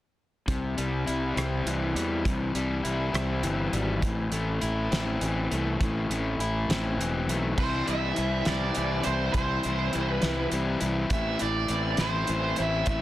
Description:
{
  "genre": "indie rock",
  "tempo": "68 BPM (dotted quarters)",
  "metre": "6/8",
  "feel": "straight",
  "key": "C major",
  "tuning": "A4 = 440 Hz",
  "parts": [
    { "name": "crunchy overdriven guitar", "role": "riff", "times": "0.5-13.0 s", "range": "A2 to E4", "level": "-29 LUFS", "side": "left 2 dB", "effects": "none" },
    { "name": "fuzz fingered electric bass", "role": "bass", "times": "0.5-13.0 s", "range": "E1 to E2", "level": "-30 LUFS", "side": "equal", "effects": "overdrive" },
    { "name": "cloth-damped thuddy drum kit", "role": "drums", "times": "0.5-13.0 s", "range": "crash cymbal, hi-hat, kick drum, rim click, snare drum", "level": "-31 LUFS", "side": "right 1 dB", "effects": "none" },
    { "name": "nasal lead guitar with a parked wah", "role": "melody", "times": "7.6-13.0 s", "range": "C5 to E5", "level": "-30 LUFS", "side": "right 3 dB", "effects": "overdrive, slapback echo, plate reverb" }
  ],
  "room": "light reverb",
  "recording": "dense, heavily limited modern master",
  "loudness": "-25 LUFS",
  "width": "side -14 dB against mid",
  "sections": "0.5-7.6 A section; 7.6-13.0 B section",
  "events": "none",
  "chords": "0.5 C; 4.0 Am; 7.6 C; 11.1 Am",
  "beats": "| 0.49 1.38 | 2.26 3.15 | 4.04 4.92 | 5.81 6.70 | 7.58 8.46 | 9.35 10.23 | 11.12 12.00 | 12.89"
}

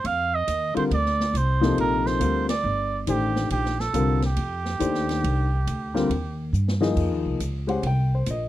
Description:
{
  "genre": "modal jazz",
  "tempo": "139 BPM",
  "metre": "4/4",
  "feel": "swing 66% on 8ths",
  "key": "unclear",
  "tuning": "A4 = 439 Hz",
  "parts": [
    { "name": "trumpet with cup mute", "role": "melody", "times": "0.0-6.5 s", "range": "G4 to F5", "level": "-27 LUFS", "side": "right 4 dB", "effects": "none" },
    { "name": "upright bass", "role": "bass", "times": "0.0-8.5 s", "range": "G1 to G2", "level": "-25 LUFS", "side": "equal", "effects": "none" },
    { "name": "swinging big-band drum kit", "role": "drums", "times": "0.0-8.4 s", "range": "crash cymbal, hi-hat, kick drum, ride cymbal, snare drum", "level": "-35 LUFS", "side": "equal", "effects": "none" },
    { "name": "warm upright piano", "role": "accompaniment", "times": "0.7-8.5 s", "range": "C3 to G5", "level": "-25 LUFS", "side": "left 3 dB", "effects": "none" }
  ],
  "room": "little or no reverb",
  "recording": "dry, close 1970s-style studio recording",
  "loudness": "-21 LUFS",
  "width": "side -14 dB against mid",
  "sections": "0.0-7.0 A section; 7.0-8.5 B section",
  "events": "band accent 2.4; drum fill 6.5-7.0",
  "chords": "0.0 F13sus4; 7.0 Fm11",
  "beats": "| 0.05 0.48 0.91 1.35 | 1.78 2.21 2.64 3.08 | 3.51 3.94 4.37 4.80 | 5.24 5.67 6.10 6.53 | 6.97 7.40 7.83 8.27"
}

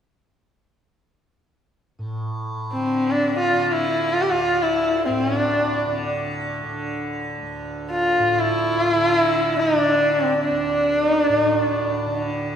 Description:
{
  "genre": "indian classical",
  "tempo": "free time",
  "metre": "none",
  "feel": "none",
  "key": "D raga bhimpalasi",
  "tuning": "A4 = 440 Hz",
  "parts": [
    { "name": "tanpura", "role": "drone", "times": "2.0-12.6 s", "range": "D2 to D3", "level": "-28 LUFS", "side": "right 1 dB", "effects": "none" },
    { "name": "rich sarangi", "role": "melody", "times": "2.7-12.2 s", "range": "C4 to G4", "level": "-19 LUFS", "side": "equal", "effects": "none" }
  ],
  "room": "wet church reverb, RT60 2.7 s",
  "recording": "recorded in a church or concert hall",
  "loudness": "-18 LUFS",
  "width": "side -8 dB against mid",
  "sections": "2.0-12.6 A section",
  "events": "none",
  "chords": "none",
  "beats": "free time"
}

